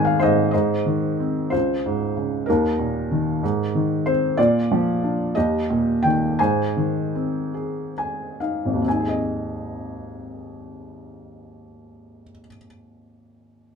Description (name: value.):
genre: classical, lyrical solo piano.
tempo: 43-64 BPM (dotted quarters).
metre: 6/8.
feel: rubato.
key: Ab major.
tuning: A4 = 439 Hz.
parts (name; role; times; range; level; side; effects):
felt-muted upright piano; solo; 0.0-13.8 s; Ab1 to Ab5; -20 LUFS; equal; none.
room: light reverb.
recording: minimal, uncompressed stereo recording.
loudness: -20 LUFS.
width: side -6 dB against mid.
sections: 0.5-8.9 A section; 8.9-13.8 B section.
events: felt piano fill 0.0-0.5, 7.5-8.9; slowing down 4.4-8.9.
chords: 0.0 Ab; 1.5 Db; 2.5 Eb5; 3.4 Ab; 4.4 Bb; 5.3 Eb; 6.4 Ab.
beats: | 0.53 1.52 | 2.48 3.43 | 4.38 5.35 | 6.38 7.54 | 8.86 10.24 | 11.60 12.97.